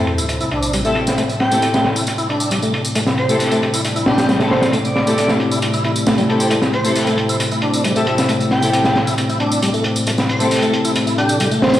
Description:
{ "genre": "breakbeat, breaks", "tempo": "135 BPM", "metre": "4/4", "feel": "straight", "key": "A minor pentatonic", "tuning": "A4 = 440 Hz", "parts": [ { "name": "dark analog pad", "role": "sustained chords", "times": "0.0-11.8 s", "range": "A3 to D5", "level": "-21 LUFS", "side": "equal", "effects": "chorus, phaser, vintage 12-bit sampler grit" }, { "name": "tonewheel organ", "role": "riff", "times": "0.0-11.6 s", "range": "G3 to E4", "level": "-22 LUFS", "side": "equal", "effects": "overdrive, chorus vibrato, slow rotary speaker, low-pass filter, tape echo" }, { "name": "sub drop", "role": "sound effects", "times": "0.0-1.2 s", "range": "none", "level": "-24 LUFS", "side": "equal", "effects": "none" }, { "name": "crunchy breakbeat drum kit", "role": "drums", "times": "0.1-11.8 s", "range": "hi-hat, snare drum", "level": "-20 LUFS", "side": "equal", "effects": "low-pass filter on kick, low-pass filter on hats, low-pass filter on snare, low-pass filter on room" }, { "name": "tambourine", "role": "drums", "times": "0.2-11.8 s", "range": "none", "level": "-26 LUFS", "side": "equal", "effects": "none" }, { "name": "airy dreamy lead", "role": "melody", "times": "0.8-11.8 s", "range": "G4 to G5", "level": "-23 LUFS", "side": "right 1 dB", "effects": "chorus, phaser, small speaker sound, tape echo" }, { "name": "muted studio string section", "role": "stabs", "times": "0.8-10.6 s", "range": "C4 to A4", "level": "-23 LUFS", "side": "left 2 dB", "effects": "vintage 12-bit sampler grit, tape echo" } ], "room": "moderate lush hall reverb, RT60 2.2 s", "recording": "played on a big sound system in a bare room, stone room reverb, vinyl crackle", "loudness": "-14 LUFS", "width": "side -12 dB against mid", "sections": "0.0-11.8 A section", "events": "impact 0.0-1.2", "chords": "0.0 Am7", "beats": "0.29 0.73 | 1.18 1.62 2.07 2.51 | 2.96 3.40 3.85 4.29 | 4.73 5.18 5.62 6.07 | 6.51 6.96 7.40 7.84 | 8.29 8.73 9.18 9.62 | 10.07 10.51 10.96 11.40" }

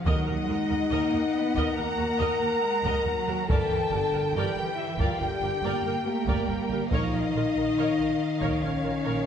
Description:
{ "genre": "cinematic, epic orchestral film score", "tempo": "70 BPM", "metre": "4/4", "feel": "straight", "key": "unclear", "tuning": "A4 = 440 Hz", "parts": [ { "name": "warm symphonic violin section", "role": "melody", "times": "0.0-9.3 s", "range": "F5 to G5", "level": "-35 LUFS", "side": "left 3 dB", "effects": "none" }, { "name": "rich symphonic cello section", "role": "bass", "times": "0.0-9.3 s", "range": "D3 to Cb4", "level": "-33 LUFS", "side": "right 2 dB", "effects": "none" }, { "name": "warm symphonic violin section", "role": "second line", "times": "0.1-9.3 s", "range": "Bb4 to Bb5", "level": "-33 LUFS", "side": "equal", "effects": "none" }, { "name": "rich symphonic viola section", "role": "accompaniment", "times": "0.1-9.2 s", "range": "F4 to Eb5", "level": "-35 LUFS", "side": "right 2 dB", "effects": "none" }, { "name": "mellow French horn section", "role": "sustained chords", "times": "0.1-9.3 s", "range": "Bb3 to Bb4", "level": "-28 LUFS", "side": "left 4 dB", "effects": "none" }, { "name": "rich symphonic double bass section", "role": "bass", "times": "0.1-9.1 s", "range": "G1 to Eb2", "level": "-33 LUFS", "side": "right 4 dB", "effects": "none" }, { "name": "taiko ensemble", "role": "drums", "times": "0.1-9.2 s", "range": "none", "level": "-30 LUFS", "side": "equal", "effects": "none" }, { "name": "timpani", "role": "percussion", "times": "0.1-1.3 s", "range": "Eb3", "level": "-36 LUFS", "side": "equal", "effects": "none" } ], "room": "moderate concert hall reverb, RT60 2.2 s", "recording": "nothing above 10.3 kHz", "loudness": "-24 LUFS", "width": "side -8 dB against mid", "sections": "0.0-9.3 A section", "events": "none", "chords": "0.1 Ebm; 3.5 Gm; 6.9 Bbm", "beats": "| 0.07 0.92 1.78 2.63 | 3.49 4.35 5.20 6.06 | 6.91 7.77 8.62" }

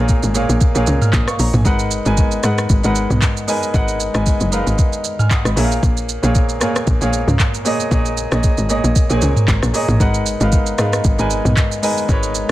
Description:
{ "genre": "amapiano", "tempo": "115 BPM", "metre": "4/4", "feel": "swing 55% on 16ths", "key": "G# dorian", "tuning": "A4 = 440 Hz", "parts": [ { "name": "clear concert grand piano", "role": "accompaniment", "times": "0.0-12.5 s", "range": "A#2 to E#6", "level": "-20 LUFS", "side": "equal", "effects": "none" }, { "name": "tight log drum bass", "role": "bass", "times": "0.0-12.5 s", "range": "F#1 to A#2", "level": "-18 LUFS", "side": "equal", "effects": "none" }, { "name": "smooth R&B drum kit", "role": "drums", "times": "0.1-12.5 s", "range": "handclaps, hi-hat, kick drum, rim click, shaker, toms", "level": "-17 LUFS", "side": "equal", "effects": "vintage 12-bit sampler grit" } ], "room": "little or no reverb", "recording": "dense, heavily limited modern master", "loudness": "-14 LUFS", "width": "side -15 dB against mid", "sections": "0.0-12.5 A section", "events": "none", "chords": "0.0 A#m7; 1.7 G#m9; 5.6 A#m7; 10.0 G#m9", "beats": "0.09 0.61 1.13 | 1.66 2.18 2.70 3.22 | 3.74 4.26 4.79 5.31 | 5.83 6.35 6.87 7.39 | 7.92 8.44 8.96 9.48 | 10.00 10.52 11.05 11.57 | 12.09" }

